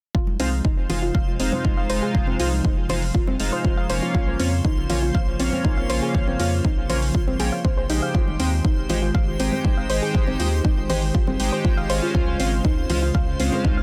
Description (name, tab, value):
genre	progressive house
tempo	120 BPM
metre	4/4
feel	straight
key	F minor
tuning	A4 = 440 Hz
part	warm analog pad	sustained chords	0.1-13.8 s	C3 to C5	-33 LUFS	equal	chorus, tremolo, vintage 12-bit sampler grit, sidechain pumping
part	soft round pluck	arpeggios	0.1-13.8 s	C4 to F5	-30 LUFS	equal	subtle chorus, sidechain pumping, tape echo
part	round analog bass	bass	0.1-13.8 s	F1 to F2	-28 LUFS	equal	sidechain pumping
part	electronic kick drum	drums	0.1-13.7 s	none	-23 LUFS	equal	overdrive
part	backwards swelling texture	texture	0.9-13.8 s	C5 to C6	-40 LUFS	equal	built-in reverb, sidechain pumping
part	congas	percussion	0.3-13.6 s	none	-35 LUFS	equal	sidechain pumping on perc
part	chorused polysynth	stabs	0.4-13.8 s	Ab3 to G5	-30 LUFS	equal	sidechain pumping, tape echo
part	electronic hi-hat	drums	0.4-13.5 s	none	-35 LUFS	equal	overdrive
room	digital ambience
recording	dense, heavily limited modern master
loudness	-22 LUFS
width	mono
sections	0.1-13.8 A section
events	filter sweep on analog synth pad 0.1-13.8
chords	0.1 Fm7; 4.1 Bbm; 8.1 Abmaj7; 12.1 Dbmaj7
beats	| 0.15 0.65 1.15 1.65 | 2.15 2.65 3.15 3.65 | 4.15 4.65 5.15 5.65 | 6.15 6.65 7.15 7.65 | 8.15 8.65 9.15 9.65 | 10.15 10.65 11.15 11.65 | 12.15 12.65 13.15 13.65